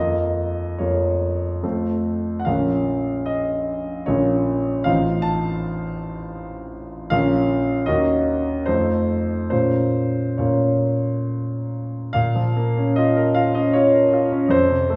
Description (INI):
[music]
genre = classical, romantic character piece for solo piano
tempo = 67-82 BPM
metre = 3/4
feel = rubato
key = Bb minor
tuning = A4 = 441 Hz
[part]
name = clear concert grand piano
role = solo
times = 0.0-15.0 s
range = A1 to A5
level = -21 LUFS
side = equal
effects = none
[sound]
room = wet recital hall reverb, RT60 1.5 s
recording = heard from further back in the room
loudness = -21 LUFS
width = mono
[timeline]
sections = 0.0-12.1 A section; 12.1-15.0 A section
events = none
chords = 0.0 Bbm/F; 1.6 F; 2.5 Bbm; 4.9 F7/A; 7.1 Bbm; 7.9 Ebm7; 8.7 F7; 9.5 Bbm